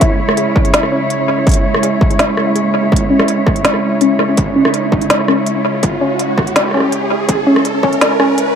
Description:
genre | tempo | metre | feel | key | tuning
half-time drum and bass | 165 BPM | 4/4 | half-time | C# minor | A4 = 439 Hz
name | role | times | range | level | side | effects
muted symphonic cello section | sustained chords | 0.0-8.6 s | C#3 to C#5 | -16 LUFS | right 2 dB | sidechain pumping
warbly dusty pluck | arpeggios | 0.0-8.4 s | C#4 to G#4 | -17 LUFS | left 1 dB | chorus, tape echo
electronic kick drum | drums | 0.0-7.9 s | none | -14 LUFS | equal | distortion
organic electronic drum kit | drums | 0.0-8.5 s | hi-hat, rim click, snare drum | -16 LUFS | equal | analog delay
riser | sound effects | 1.0-8.6 s | none | -22 LUFS | right 2 dB | none
room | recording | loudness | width
wet spring reverb, RT60 1.9 s | echo-heavy mix, high-pass filter | -11 LUFS | side -7 dB against mid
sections
0.0-8.6 A section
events
build-up 0.0-8.6; filter sweep on synth pluck 0.0-8.6; riser 1.0-8.6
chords
0.0 C#m

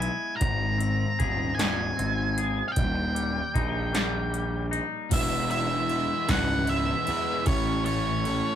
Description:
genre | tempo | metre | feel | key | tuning
quiet-loud alternative rock | 51 BPM (dotted quarters) | 6/8 | straight | unclear | A4 = 440 Hz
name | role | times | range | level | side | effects
octave-fuzz lead guitar | melody | 0.0-8.6 s | C#5 to Bb5 | -29 LUFS | right 1 dB | distortion
clean electric guitar | arpeggios | 0.0-5.1 s | Eb2 to Ab4 | -32 LUFS | left 4 dB | slapback echo
fuzz picked electric bass | bass | 0.0-8.4 s | Db1 to E2 | -29 LUFS | equal | overdrive
electro analog drum machine | drums | 0.0-8.4 s | crash cymbal, hi-hat, kick drum, ride cymbal, snare drum | -29 LUFS | equal | none
cranked stack guitar | riff | 5.1-8.6 s | E2 to A4 | -33 LUFS | right 4 dB | overdrive
thick fuzz guitar | riff | 5.1-8.6 s | E2 to A4 | -33 LUFS | left 3 dB | distortion
room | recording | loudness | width
moderate small room reverb, RT60 0.5 s | rough rehearsal-room recording | -24 LUFS | side -10 dB against mid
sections
0.0-5.1 A section; 5.1-8.6 B section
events
kick and snare drop out 4.7-5.1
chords
0.4 Ab; 2.8 Eb; 5.1 E; 7.5 A

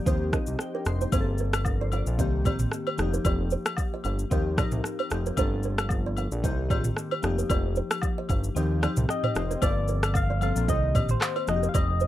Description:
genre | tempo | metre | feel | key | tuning
afrobeats | 113 BPM | 4/4 | swing 55% on 16ths | G minor | A4 = 439 Hz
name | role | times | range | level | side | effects
glassy digital keys | accompaniment | 0.0-12.1 s | D3 to C6 | -32 LUFS | left 3 dB | chorus
buzzing kalimba | riff | 0.1-12.1 s | Bb4 to F5 | -34 LUFS | right 7 dB | digital delay
fat analog bass | bass | 0.1-12.1 s | F1 to Eb2 | -27 LUFS | equal | none
afro-pop drum kit | drums | 0.1-12.1 s | handclaps, kick drum, rim click, shaker, toms | -27 LUFS | equal | none
agogo bells and woodblock | percussion | 1.1-11.9 s | none | -36 LUFS | left 6 dB | none
soft struck synth lead | melody | 9.1-12.1 s | C5 to F5 | -30 LUFS | left 3 dB | chorus, phaser
room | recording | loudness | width
little or no reverb | none | -24 LUFS | side -13 dB against mid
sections
0.0-1.1 A section; 1.1-9.6 B section; 9.6-12.1 C section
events
synth keys fill 0.0-1.1, 8.8-9.6; kick muted 8.6-9.6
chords
0.1 Eb69; 1.1 Gm11; 2.2 Cm7; 3.0 F9sus4; 5.4 Gm11; 6.4 Cm7; 7.2 F9sus4; 9.6 Gm11; 10.7 Cm7; 11.5 F9sus4

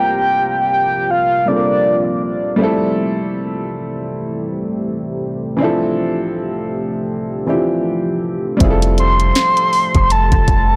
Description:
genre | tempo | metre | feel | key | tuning
contemporary R&B | 80 BPM | 4/4 | swing 58% on 16ths | D minor | A4 = 440 Hz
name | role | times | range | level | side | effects
soft octave-layered synth lead | melody | 0.0-2.2, 9.0-10.8 s | D5 to C6 | -18 LUFS | equal | chorus, digital delay
warm concert grand piano | accompaniment | 0.0-10.8 s | E3 to Bb4 | -22 LUFS | equal | none
deep dark ambient pad | sustained chords | 0.0-10.8 s | C3 to G4 | -26 LUFS | equal | chorus, built-in reverb
long sustained 808-style bass | bass | 8.6-10.8 s | F1 | -18 LUFS | equal | none
smooth R&B drum kit | drums | 8.6-10.7 s | hi-hat, kick drum, snare drum | -19 LUFS | equal | none
room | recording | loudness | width
light reverb | blown-out, overdriven recording, overdrive | -17 LUFS | mono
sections
0.0-10.8 A section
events
none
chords
0.0 C7sus4; 2.6 Am7; 5.6 Dm9; 8.6 Fmaj9

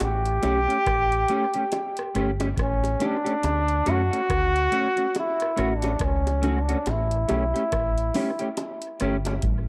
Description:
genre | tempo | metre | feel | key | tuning
roots reggae | 70 BPM | 4/4 | swing 59% on 16ths | unclear | A4 = 440 Hz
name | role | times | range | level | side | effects
clear trombone | melody | 0.0-9.5 s | C#4 to G4 | -27 LUFS | equal | tape echo
deep dub fingered electric bass | bass | 0.0-9.7 s | G1 to F#2 | -29 LUFS | equal | tube saturation
booming analog drum machine | drums | 0.0-9.7 s | hi-hat, kick drum, rim click, toms | -32 LUFS | equal | cassette tape
bongos | percussion | 0.0-9.4 s | none | -35 LUFS | equal | none
mellow electric guitar | accompaniment | 0.4-9.3 s | A3 to G4 | -32 LUFS | equal | ensemble chorus, tape echo
room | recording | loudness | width
light reverb, digital ambience | home recording on cassette | -24 LUFS | mono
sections
0.0-9.7 A section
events
drum fill 9.4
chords
0.0 A7; 3.4 Dmaj7; 6.9 A7

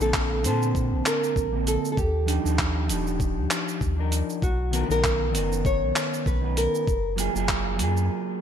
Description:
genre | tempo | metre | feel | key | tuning
sunset chillout | 98 BPM | 4/4 | swing 57% on 16ths | unclear | A4 = 436 Hz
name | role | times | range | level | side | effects
nylon-string guitar | melody | 0.0-8.1 s | F#4 to C#5 | -28 LUFS | equal | digital delay
mellow electric guitar | accompaniment | 0.0-8.4 s | D3 to A5 | -28 LUFS | moving between left 6 dB and right 7 dB | auto-pan, ping-pong delay
warm sub bass | bass | 0.0-8.1 s | Eb1 to Bb2 | -26 LUFS | equal | none
dusty soul sampler-style drum kit | drums | 0.0-8.1 s | handclaps, hi-hat, shaker | -29 LUFS | right 1 dB | gated reverb
electronic kick drum | drums | 0.1-7.6 s | none | -27 LUFS | equal | none
room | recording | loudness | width
light reverb, digital ambience | bright 1980s-style digital production | -22 LUFS | side -8 dB against mid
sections
0.0-8.4 A section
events
break 8.1-8.4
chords
0.0 Bbmaj9; 2.0 Ebmaj9; 4.4 Bmaj9; 6.9 Gbmaj9

